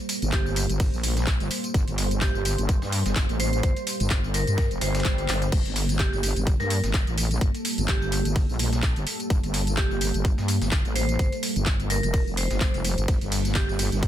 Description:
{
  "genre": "bass house",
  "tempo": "127 BPM",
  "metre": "4/4",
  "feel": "swing 56% on 16ths",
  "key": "G minor",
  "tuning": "A4 = 440 Hz",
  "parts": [
    { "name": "deep dark ambient pad", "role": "sustained chords", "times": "0.0-14.1 s", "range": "G3 to C5", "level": "-32 LUFS", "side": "right 1 dB", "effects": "chorus, built-in reverb, sidechain pumping" },
    { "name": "dusty soul sampler-style drum kit", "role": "drums", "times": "0.1-14.1 s", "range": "hi-hat, snare drum", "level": "-40 LUFS", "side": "right 1 dB", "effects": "none" },
    { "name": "garage drum kit", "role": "drums", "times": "0.1-14.1 s", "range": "crash cymbal, handclaps, hi-hat, ride cymbal, tambourine", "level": "-30 LUFS", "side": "equal", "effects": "none" },
    { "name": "wobble bass", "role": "bass", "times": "0.2-14.1 s", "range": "F1 to G2", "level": "-26 LUFS", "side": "equal", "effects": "chorus, tube saturation, sidechain pumping" },
    { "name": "vibraphone with hard mallets", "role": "melody", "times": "0.3-13.8 s", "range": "G4 to C5", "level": "-33 LUFS", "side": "right 1 dB", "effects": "digital delay" },
    { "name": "electronic kick drum", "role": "drums", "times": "0.3-14.1 s", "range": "none", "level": "-24 LUFS", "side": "equal", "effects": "none" },
    { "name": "swell", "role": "sound effects", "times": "4.8-5.5 s", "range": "none", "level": "-36 LUFS", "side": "right 2 dB", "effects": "none" }
  ],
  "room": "little or no reverb",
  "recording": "dense, heavily limited modern master",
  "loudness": "-22 LUFS",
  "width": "side -11 dB against mid",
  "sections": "0.0-14.1 A section",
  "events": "swell 4.8-5.5; drum fill 5.3",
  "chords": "0.0 Gmadd9"
}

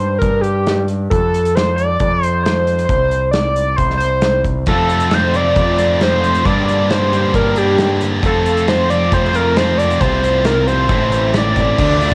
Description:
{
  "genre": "indie rock",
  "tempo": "135 BPM",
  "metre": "4/4",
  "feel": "straight",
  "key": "unclear",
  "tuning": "A4 = 439 Hz",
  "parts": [
    { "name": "overdriven synth lead", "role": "melody", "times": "0.0-12.1 s", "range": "G4 to D5", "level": "-19 LUFS", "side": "equal", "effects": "distortion, cassette tape" },
    { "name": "growling picked electric bass", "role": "bass", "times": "0.0-12.1 s", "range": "A1 to G2", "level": "-21 LUFS", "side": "equal", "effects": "overdrive" },
    { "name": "loose indie drum kit", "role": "drums", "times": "0.2-12.1 s", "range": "crash cymbal, hi-hat, kick drum, snare drum", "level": "-22 LUFS", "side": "equal", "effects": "cassette tape" },
    { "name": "overdriven electric guitar", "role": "riff", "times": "4.7-12.1 s", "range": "A2 to G4", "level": "-24 LUFS", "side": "equal", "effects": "ensemble chorus, cassette tape" },
    { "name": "scooped high-gain guitar", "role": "riff", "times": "4.7-12.1 s", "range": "F2 to F4", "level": "-23 LUFS", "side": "equal", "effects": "distortion, cassette tape" }
  ],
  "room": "light reverb",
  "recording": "home recording on cassette",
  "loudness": "-15 LUFS",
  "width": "mono",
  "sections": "0.0-11.8 A section",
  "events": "none",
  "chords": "0.0 G5; 1.1 F6; 2.9 Csus2; 4.7 F6; 6.5 Gm; 8.2 F; 10.0 Csus4; 10.9 Am"
}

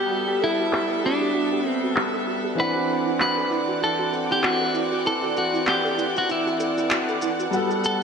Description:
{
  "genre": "sunset chillout",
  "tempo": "97 BPM",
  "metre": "4/4",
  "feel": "swing 57% on 16ths",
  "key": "unclear",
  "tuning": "A4 = 440 Hz",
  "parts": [
    { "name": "clean electric guitar", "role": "melody", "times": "0.0-8.0 s", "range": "D4 to B4", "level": "-24 LUFS", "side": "equal", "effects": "ping-pong delay" },
    { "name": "clear concert grand piano", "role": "accompaniment", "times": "0.0-8.0 s", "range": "E3 to F#5", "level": "-31 LUFS", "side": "moving between left 1 dB and right 6 dB", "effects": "auto-pan" },
    { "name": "clear studio string section", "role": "sustained chords", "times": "0.0-8.0 s", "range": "E3 to F#5", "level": "-27 LUFS", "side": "equal", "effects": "vintage 12-bit sampler grit" },
    { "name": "soft round pluck", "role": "arpeggios", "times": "0.0-8.0 s", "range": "E4 to A4", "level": "-29 LUFS", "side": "right 2 dB", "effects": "lush chorus, ping-pong delay" },
    { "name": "wind-like tuned noise texture", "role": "texture", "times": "0.1-8.0 s", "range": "A4 to F#5", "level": "-34 LUFS", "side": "equal", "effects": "built-in reverb, wide subtle chorus" },
    { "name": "electronic shaker and handclaps", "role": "drums", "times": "0.1-8.0 s", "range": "none", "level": "-27 LUFS", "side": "equal", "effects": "low-pass filter on perc, low-pass filter on hats, low-pass filter on snare, gated reverb" }
  ],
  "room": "wet lush hall reverb, RT60 1.7 s",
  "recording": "bright 1980s-style digital production",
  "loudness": "-20 LUFS",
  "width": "side -6 dB against mid",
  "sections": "0.0-8.0 A section",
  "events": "filter sweep on drum 0.0-8.0; filter sweep on synth pluck 0.0-8.0",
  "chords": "0.0 Gmaj9; 2.6 D9"
}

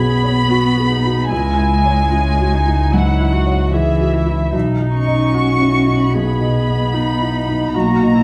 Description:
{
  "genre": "neoclassical piano and strings",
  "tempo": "74 BPM",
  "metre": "4/4",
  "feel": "rubato",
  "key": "G# minor",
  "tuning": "A4 = 440 Hz",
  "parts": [
    { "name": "muted chamber violin section", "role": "melody", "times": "0.0-8.2 s", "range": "E5 to C#6", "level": "-23 LUFS", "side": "equal", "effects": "none" },
    { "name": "muted cello", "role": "second line", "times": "0.0-8.2 s", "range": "E3 to C#4", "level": "-22 LUFS", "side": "equal", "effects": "none" },
    { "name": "felt-muted upright piano", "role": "accompaniment", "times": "0.0-8.2 s", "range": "B1 to D#5", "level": "-23 LUFS", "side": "equal", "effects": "none" },
    { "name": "muted viola", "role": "accompaniment", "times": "0.0-8.2 s", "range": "C#4 to G#4", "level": "-27 LUFS", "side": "equal", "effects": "none" },
    { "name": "muted double bass", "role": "bass", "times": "0.0-8.2 s", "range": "B1 to C#2", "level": "-20 LUFS", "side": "equal", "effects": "none" }
  ],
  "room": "wet large studio reverb, RT60 1.2 s",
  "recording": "band playing live in one room",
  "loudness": "-16 LUFS",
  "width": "mono",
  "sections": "0.0-8.2 A section",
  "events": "none",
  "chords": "0.0 Bsus2; 1.3 C#m; 4.5 G#m/B"
}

